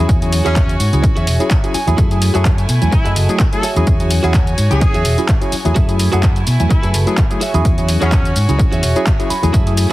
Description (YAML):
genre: filtered disco house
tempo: 127 BPM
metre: 4/4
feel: swing 55% on 16ths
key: unclear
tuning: A4 = 440 Hz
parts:
  - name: tine electric piano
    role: accompaniment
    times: 0.0-9.9 s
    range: F#3 to G#5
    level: -20 LUFS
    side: equal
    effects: medium stereo tremolo, phaser, sidechain pumping
  - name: clear studio string section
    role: sustained chords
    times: 0.0-9.9 s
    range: A3 to G#5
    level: -26 LUFS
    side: equal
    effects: sidechain pumping
  - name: direct-recorded clean electric guitar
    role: riff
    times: 0.0-9.9 s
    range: F#4 to B5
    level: -24 LUFS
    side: right 4 dB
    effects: vintage 12-bit sampler grit, sidechain pumping
  - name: fingered electric bass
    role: bass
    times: 0.0-9.9 s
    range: E1 to B2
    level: -15 LUFS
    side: equal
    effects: sidechain pumping
  - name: electronic kick drum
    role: drums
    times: 0.1-9.6 s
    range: none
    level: -14 LUFS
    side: equal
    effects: none
  - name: punchy analog drum machine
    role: drums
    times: 0.1-9.9 s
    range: handclaps, hi-hat, shaker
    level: -23 LUFS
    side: equal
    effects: sidechain pumping on hats, sidechain pumping on cymbals, sidechain pumping on perc
  - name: bright horn section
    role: melody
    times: 0.5-8.4 s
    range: C#4 to A4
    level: -25 LUFS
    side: equal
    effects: sidechain pumping, dub echo
room: little or no reverb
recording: heavily compressed radio sound, multiband compression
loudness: -12 LUFS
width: side -17 dB against mid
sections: 0.0-9.9 A section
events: clean electric guitar fill 1.0-2.0, 8.6-9.5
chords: 0.0 E69; 2.0 F#m9; 3.6 E69; 5.8 F#m9; 7.4 E69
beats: | 0.09 0.56 1.04 1.51 | 1.98 2.45 2.92 3.40 | 3.87 4.34 4.82 5.29 | 5.76 6.23 6.71 7.18 | 7.65 8.12 8.60 9.07 | 9.54